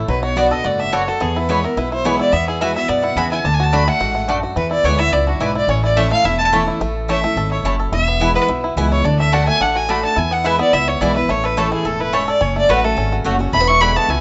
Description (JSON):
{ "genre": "bluegrass", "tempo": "214 BPM", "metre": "4/4", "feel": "straight", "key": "A major", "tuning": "A4 = 441 Hz", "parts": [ { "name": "bluegrass banjo", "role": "melody", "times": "0.0-14.2 s", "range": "E3 to A4", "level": "-26 LUFS", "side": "equal", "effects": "none" }, { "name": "picked steel-string acoustic guitar", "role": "accompaniment", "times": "0.0-14.2 s", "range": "E2 to F#4", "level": "-27 LUFS", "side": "equal", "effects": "none" }, { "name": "upright bass", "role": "bass", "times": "0.0-14.2 s", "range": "E1 to F#2", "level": "-24 LUFS", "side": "equal", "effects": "none" }, { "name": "rich fiddle", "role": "melody", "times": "0.1-14.2 s", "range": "F#4 to C#6", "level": "-20 LUFS", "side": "equal", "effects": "none" }, { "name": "mandolin", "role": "stabs", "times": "0.4-13.9 s", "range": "A3 to A5", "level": "-26 LUFS", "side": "equal", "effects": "none" } ], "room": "light reverb", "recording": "rough home demo mix, nothing above 7.9 kHz", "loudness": "-17 LUFS", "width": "mono", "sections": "0.0-6.8 A section; 6.8-14.2 B section", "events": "fiddle solo 6.8-14.2", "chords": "0.1 Bm; 1.2 E; 2.3 Eadd9; 3.4 D; 4.6 E7; 5.7 A; 7.9 E; 9.1 D; 10.2 E; 11.3 A; 12.4 F#m; 13.5 E7", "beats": "| 0.09 0.37 0.65 0.93 | 1.21 1.49 1.77 2.05 | 2.33 2.61 2.89 3.17 | 3.45 3.73 4.01 4.29 | 4.57 4.85 5.13 5.41 | 5.69 5.97 6.25 6.53 | 6.81 7.09 7.37 7.65 | 7.93 8.21 8.49 8.77 | 9.05 9.33 9.61 9.89 | 10.17 10.45 10.73 11.01 | 11.29 11.57 11.85 12.13 | 12.41 12.69 12.97 13.25 | 13.53 13.81 14.09" }